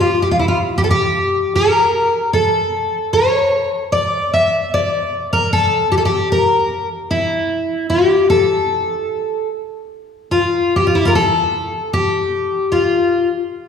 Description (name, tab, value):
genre	fado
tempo	76 BPM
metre	2/4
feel	rubato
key	unclear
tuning	A4 = 437 Hz
part	fingerpicked twelve-string acoustic guitar	solo	0.0-13.3 s	E4 to E5	-14 LUFS	left 1 dB	none
room	wet scoring stage reverb, RT60 1.7 s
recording	heard from further back in the room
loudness	-14 LUFS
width	side -7 dB against mid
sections	0.0-10.3 A section; 10.3-13.7 A section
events	none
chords	none